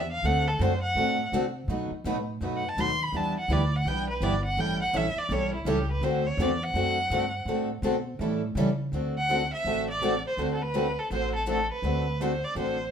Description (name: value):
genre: acoustic string swing (jazz manouche)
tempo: 166 BPM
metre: 4/4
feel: swing 61% on 8ths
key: D mixolydian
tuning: A4 = 440 Hz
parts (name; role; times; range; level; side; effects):
- warm violin; melody; 0.0-12.9 s; E4 to C6; -29 LUFS; equal; none
- upright bass; bass; 0.0-12.9 s; G1 to C#3; -30 LUFS; equal; none
- picked plugged-in steel-string acoustic guitar; accompaniment; 0.2-12.8 s; B2 to B4; -32 LUFS; right 4 dB; none
- picked steel-string acoustic guitar; accompaniment; 0.2-12.8 s; B2 to A4; -31 LUFS; left 4 dB; none
room: moderate studio reverb, RT60 0.8 s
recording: minimal, uncompressed stereo recording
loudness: -25 LUFS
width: side -7 dB against mid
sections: 0.0-8.9 A section; 8.9-12.9 B section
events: violin solo 0.0-8.9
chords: 0.2 D7; 1.7 B7; 3.1 Em7; 4.6 A7; 6.0 D7; 8.2 A7; 8.9 D7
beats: | 0.24 0.61 0.97 1.33 | 1.69 2.05 2.41 2.77 | 3.14 3.50 3.86 4.22 | 4.58 4.95 5.31 5.67 | 6.03 6.39 6.75 7.12 | 7.48 7.84 8.20 8.56 | 8.93 9.29 9.65 10.02 | 10.38 10.74 11.11 11.47 | 11.83 12.20 12.56